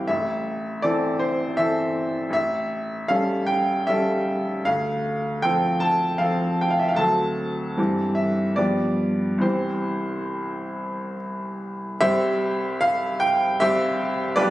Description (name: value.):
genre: classical, romantic character piece for solo piano.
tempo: 68-80 BPM.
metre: 3/4.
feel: rubato.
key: C major.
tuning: A4 = 438 Hz.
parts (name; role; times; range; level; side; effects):
bright baby grand piano; solo; 0.0-14.5 s; A1 to A5; -21 LUFS; equal; none.
room: moderate recital hall reverb, RT60 1.5 s.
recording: recorded on a phone in the room, studio reverb, compression, nothing above 10.4 kHz.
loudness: -21 LUFS.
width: side -15 dB against mid.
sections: 0.0-12.0 A section; 12.0-14.5 B section.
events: none.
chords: 0.1 Am; 2.4 A7; 4.7 Dm7; 7.0 D7; 7.8 C/G; 8.6 G7; 9.4 C.